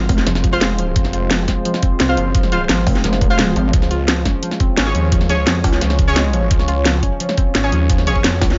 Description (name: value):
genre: dark technical drum and bass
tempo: 173 BPM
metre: 4/4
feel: straight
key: unclear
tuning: A4 = 440 Hz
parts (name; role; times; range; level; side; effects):
- deep dark ambient pad; sustained chords; 0.0-8.6 s; Ab3 to Db5; -27 LUFS; equal; chorus, built-in reverb, sidechain pumping
- soft round pluck; arpeggios; 0.0-8.5 s; F3 to F4; -26 LUFS; equal; chorus, sidechain pumping, digital delay
- orchestra-hit-like synth stab; stabs; 0.0-8.6 s; Db4 to F5; -25 LUFS; equal; built-in reverb, digital delay
- snarling distorted saw bass; bass; 0.0-8.4 s; F1 to F2; -21 LUFS; equal; distortion, overdrive, sidechain pumping
- pulsing pluck wobble bass; bass; 0.1-0.3, 2.9-5.8, 8.4-8.6 s; F1 to Db2; -21 LUFS; equal; chorus
- drum and bass drum kit; drums; 0.1-8.6 s; hi-hat, snare drum; -22 LUFS; equal; none
- electronic kick drum; drums; 0.1-8.5 s; none; -19 LUFS; equal; none
room: digital ambience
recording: nothing above 7.6 kHz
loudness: -16 LUFS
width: mono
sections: 0.0-8.6 A section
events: none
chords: 0.0 Fm; 3.7 Db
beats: 0.27 0.61 | 0.96 1.31 1.65 2.00 | 2.35 2.69 3.04 3.39 | 3.73 4.08 4.43 4.77 | 5.12 5.47 5.81 6.16 | 6.51 6.86 7.20 7.55 | 7.89 8.24